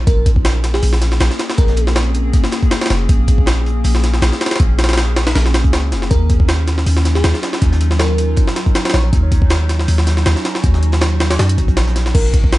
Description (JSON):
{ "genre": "drum and bass, jungle", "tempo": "159 BPM", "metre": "4/4", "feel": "swing 54% on 16ths", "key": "unclear", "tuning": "A4 = 440 Hz", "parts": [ { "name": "warbly tape-like pad", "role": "sustained chords", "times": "0.0-12.6 s", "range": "Gb3 to Ab4", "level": "-24 LUFS", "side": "equal", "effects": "chorus, built-in reverb, phaser" }, { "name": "warm 808-style bass", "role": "bass", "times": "0.0-12.6 s", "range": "F1 to Gb2", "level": "-15 LUFS", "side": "equal", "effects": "none" }, { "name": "bell-like FM electric piano", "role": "melody", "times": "0.1-1.9, 6.1-9.1, 12.1-12.4 s", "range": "Ab4 to Db5", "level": "-26 LUFS", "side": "left 1 dB", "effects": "chorus, dub echo" }, { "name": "crunchy breakbeat drum kit", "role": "drums", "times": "0.1-12.1 s", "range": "hi-hat, snare drum", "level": "-33 LUFS", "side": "right 1 dB", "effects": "none" }, { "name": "jungle sampler-style drum kit", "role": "drums", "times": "0.1-12.6 s", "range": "crash cymbal, hi-hat, kick drum, snare drum", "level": "-16 LUFS", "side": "equal", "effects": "overdrive, studio reverb" } ], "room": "little or no reverb", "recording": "vinyl crackle, nothing above 10.9 kHz", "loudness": "-12 LUFS", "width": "side -17 dB against mid", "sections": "0.0-12.1 A section", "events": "drop 0.0-12.1", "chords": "0.1 Bbm9; 6.1 Ebm9" }